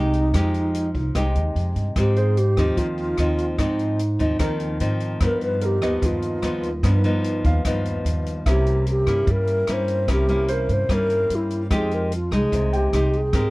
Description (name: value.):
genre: bossa nova.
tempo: 148 BPM.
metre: 4/4.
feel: straight.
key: unclear.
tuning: A4 = 440 Hz.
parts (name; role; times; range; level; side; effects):
mellow wooden-headed alto flute; melody; 0.0-13.5 s; Eb4 to C5; -24 LUFS; equal; none.
nylon-string guitar; accompaniment; 0.0-13.5 s; G2 to Bb4; -25 LUFS; equal; none.
upright bass; bass; 0.0-13.5 s; C2 to Ab2; -23 LUFS; equal; none.
open jazz drum kit; drums; 0.1-13.4 s; hi-hat, kick drum, rim click; -28 LUFS; equal; none.
clear grand piano; accompaniment; 2.2-13.5 s; Bb4 to G5; -34 LUFS; right 2 dB; none.
room: light reverb.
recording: worn, warbling old tape, cassette tape, warbly pitch drift.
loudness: -19 LUFS.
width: side -21 dB against mid.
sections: 0.0-13.5 A section.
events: none.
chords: 0.0 Fm9; 2.0 Ab6; 5.2 G7alt; 8.5 C7b9; 11.7 Fm9.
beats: | 0.34 0.74 1.15 1.56 | 1.96 2.37 2.77 3.18 | 3.59 3.99 4.40 4.80 | 5.21 5.62 6.02 6.43 | 6.83 7.24 7.65 8.05 | 8.46 8.87 9.27 9.68 | 10.08 10.49 10.90 11.30 | 11.71 12.11 12.52 12.93 | 13.33.